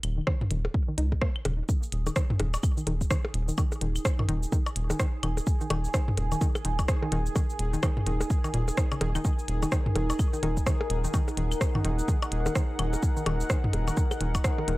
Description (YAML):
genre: minimal techno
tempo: 127 BPM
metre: 4/4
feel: swing 60% on 16ths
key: Eb minor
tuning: A4 = 440 Hz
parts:
  - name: rubbery square bass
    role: bass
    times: 0.0-14.8 s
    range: Eb1 to Db2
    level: -29 LUFS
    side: equal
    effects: sidechain pumping
  - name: minimal click drum kit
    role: drums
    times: 0.0-14.8 s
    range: cabasa, hi-hat, rim click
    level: -34 LUFS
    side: right 1 dB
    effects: none
  - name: electronic claves, percussion blips and toms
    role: percussion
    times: 0.0-14.7 s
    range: none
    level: -32 LUFS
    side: left 1 dB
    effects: none
  - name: hollow square pluck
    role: riff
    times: 0.2-14.7 s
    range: Bb2 to Eb4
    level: -34 LUFS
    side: equal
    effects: chorus, sidechain pumping, analog delay
  - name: electronic kick drum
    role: drums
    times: 0.3-14.6 s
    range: none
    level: -26 LUFS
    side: equal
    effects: overdrive
  - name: deep dark ambient pad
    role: texture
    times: 3.8-14.8 s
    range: Eb4 to Ab5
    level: -35 LUFS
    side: equal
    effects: chorus, built-in reverb, sidechain pumping
  - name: pulsing gated texture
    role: texture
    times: 1.7-14.8 s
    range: Ab4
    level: -43 LUFS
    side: right 1 dB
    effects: chorus, built-in reverb, sidechain pumping
room: little or no reverb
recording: dry, gritty hardware recording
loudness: -25 LUFS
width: side -19 dB against mid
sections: 0.0-1.7 A section; 1.7-14.8 B section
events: drop 1.7-14.8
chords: 0.0 Eb5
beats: 0.27 0.74 1.22 | 1.69 2.16 2.63 3.10 | 3.58 4.05 4.52 5.00 | 5.47 5.94 6.41 6.88 | 7.36 7.83 8.30 8.77 | 9.25 9.72 10.19 10.66 | 11.14 11.61 12.08 12.55 | 13.03 13.50 13.97 14.44